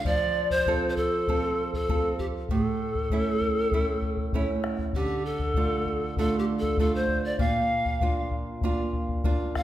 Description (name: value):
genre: andean folk, Andean ensemble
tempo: 98 BPM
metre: 4/4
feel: straight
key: unclear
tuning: A4 = 440 Hz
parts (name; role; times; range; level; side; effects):
- bright polished pan flute; melody; 0.0-9.6 s; G4 to F5; -27 LUFS; left 1 dB; none
- nylon-string guitar; accompaniment; 0.0-9.6 s; A2 to A4; -29 LUFS; right 3 dB; none
- bombo; percussion; 0.0-9.6 s; none; -30 LUFS; left 2 dB; none
room: wet recital hall reverb, RT60 1.3 s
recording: recorded in a church or concert hall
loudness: -24 LUFS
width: side -13 dB against mid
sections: 0.0-9.6 A section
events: none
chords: 0.0 F; 2.5 A; 4.9 Dm; 7.4 Bb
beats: | 0.04 0.66 1.27 1.88 | 2.49 3.10 3.72 4.33 | 4.94 5.56 6.17 6.78 | 7.40 8.01 8.62 9.24